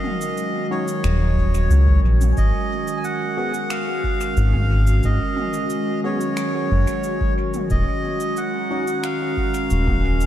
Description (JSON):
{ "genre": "ambient dub", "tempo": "90 BPM", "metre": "4/4", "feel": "straight", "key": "Eb minor", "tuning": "A4 = 440 Hz", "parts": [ { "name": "melodica", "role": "melody", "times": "0.0-10.3 s", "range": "Db5 to Ab5", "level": "-26 LUFS", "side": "right 1 dB", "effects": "dub echo" }, { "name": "warbly tape-like pad", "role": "sustained chords", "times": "0.0-10.3 s", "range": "Eb3 to Bb5", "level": "-25 LUFS", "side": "right 1 dB", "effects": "chorus, built-in reverb" }, { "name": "vibraphone with medium mallets", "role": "arpeggios", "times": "0.0-10.3 s", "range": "Gb3 to Ab5", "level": "-32 LUFS", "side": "left 4 dB", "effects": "ping-pong delay" }, { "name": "organic electronic drum kit", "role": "drums", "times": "0.0-10.3 s", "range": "cabasa, finger snaps, toms", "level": "-34 LUFS", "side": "right 2 dB", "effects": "overdrive, small room ambience, dub echo" }, { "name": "overdriven tine electric piano", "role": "stabs", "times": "0.7-8.8 s", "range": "Cb4 to Ab4", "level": "-34 LUFS", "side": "left 3 dB", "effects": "none" }, { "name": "round analog bass", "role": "bass", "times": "1.0-10.3 s", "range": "Eb1 to Db2", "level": "-16 LUFS", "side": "equal", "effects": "none" }, { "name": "electronic kick drum", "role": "drums", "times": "1.4-10.0 s", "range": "none", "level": "-26 LUFS", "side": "equal", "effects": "small room ambience" } ], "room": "light reverb, digital ambience", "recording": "none", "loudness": "-18 LUFS", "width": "side -12 dB against mid", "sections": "0.0-10.3 A section", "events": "none", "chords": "0.0 Ebm7; 2.4 Ab7(no3); 7.7 Ebm7" }